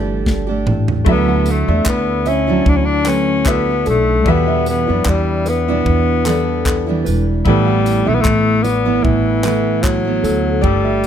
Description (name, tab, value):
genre	acoustic pop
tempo	75 BPM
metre	4/4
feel	swing 55% on 16ths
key	unclear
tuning	A4 = 435 Hz
part	breathy alto saxophone	melody	0.0-11.1 s	E3 to D4	-18 LUFS	left 4 dB	none
part	bright grand piano	accompaniment	0.0-11.1 s	A3 to E5	-27 LUFS	left 6 dB	none
part	fingerpicked steel-string acoustic guitar	accompaniment	0.0-11.1 s	E2 to G4	-19 LUFS	right 7 dB	none
part	upright bass	bass	0.0-11.1 s	E1 to F#2	-19 LUFS	equal	none
part	modern studio drum kit	drums	0.3-11.1 s	handclaps, kick drum, snare drum, tambourine, toms	-19 LUFS	equal	none
part	nylon-string guitar	arpeggios	1.3-11.0 s	A4 to F#5	-24 LUFS	equal	none
room	light reverb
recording	none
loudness	-13 LUFS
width	side -9 dB against mid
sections	0.0-11.1 A section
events	drum fill 0.3-1.1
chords	0.0 Gsus2; 1.1 Dadd9; 4.3 Em7; 7.5 Asus2